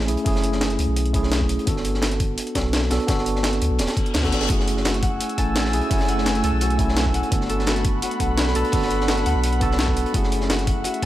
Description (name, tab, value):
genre	liquid drum and bass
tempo	170 BPM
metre	4/4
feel	straight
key	F# minor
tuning	A4 = 440 Hz
part	mellow tine electric piano	accompaniment	0.0-11.1 s	A3 to G#5	-25 LUFS	right 1 dB	medium stereo tremolo, tape echo
part	sub bass with octave	bass	0.0-11.1 s	D1 to D2	-24 LUFS	equal	none
part	crunchy breakbeat drum kit	drums	0.0-11.1 s	hi-hat, snare drum	-30 LUFS	equal	high-pass filter on hats, high-pass filter on snare, high-pass filter on room
part	breakbeat sampler-style drum kit	drums	0.1-11.1 s	hi-hat, snare drum	-27 LUFS	equal	none
part	electronic kick drum	drums	0.3-11.1 s	none	-24 LUFS	equal	overdrive
part	reverse cymbal	sound effects	4.0-4.5 s	none	-31 LUFS	left 5 dB	none
part	airy breathy pad	sustained chords	4.9-11.1 s	A3 to E6	-29 LUFS	equal	chorus
part	concert harp	arpeggios	4.5-11.1 s	F#4 to F#5	-29 LUFS	left 3 dB	vintage 12-bit sampler grit, tape echo
room	light reverb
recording	none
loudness	-19 LUFS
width	side -14 dB against mid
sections	0.0-11.1 A section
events	reverse cymbal 4.0-4.5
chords	0.0 F#m9; 1.7 Gmaj9; 4.5 F#m9; 7.3 Gmaj9; 10.1 F#m9